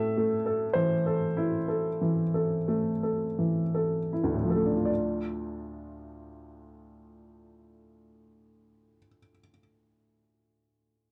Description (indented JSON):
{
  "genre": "neoclassical minimalist piano",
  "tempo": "40-52 BPM",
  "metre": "4/4",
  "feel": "rubato",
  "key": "D minor",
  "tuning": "A4 = 442 Hz",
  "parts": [
    { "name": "clear upright piano", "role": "solo", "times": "0.0-11.1 s", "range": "D2 to E5", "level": "-29 LUFS", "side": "equal", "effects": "none" }
  ],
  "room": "light reverb",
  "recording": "dark, warm production",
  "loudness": "-28 LUFS",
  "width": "mono",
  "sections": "0.0-4.9 A section; 4.9-10.8 B section",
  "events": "slowing down 0.0-4.9",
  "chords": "0.0 Am; 4.9 Dm",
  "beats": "0.77 2.03 3.41 | 4.88 6.34 7.83 9.30"
}